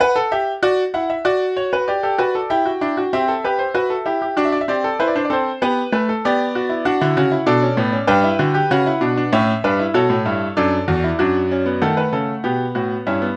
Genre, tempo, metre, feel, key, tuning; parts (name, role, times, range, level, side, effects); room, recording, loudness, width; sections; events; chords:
classical, baroque-style 4-part fugue for grand piano; 96 BPM; 4/4; straight; G major; A4 = 440 Hz
bright concert grand piano; solo; 0.0-13.4 s; E2 to G5; -18 LUFS; equal
light reverb; -18 LUFS; mono
0.0-1.9 A section; 1.9-11.8 B section; 11.8-13.4 C section
0.0 A7(no3); 0.6 D; 1.9 G; 3.1 C; 4.4 D7; 5.6 G; 6.8 D; 8.1 G; 9.3 A7; 10.6 D; 11.8 B7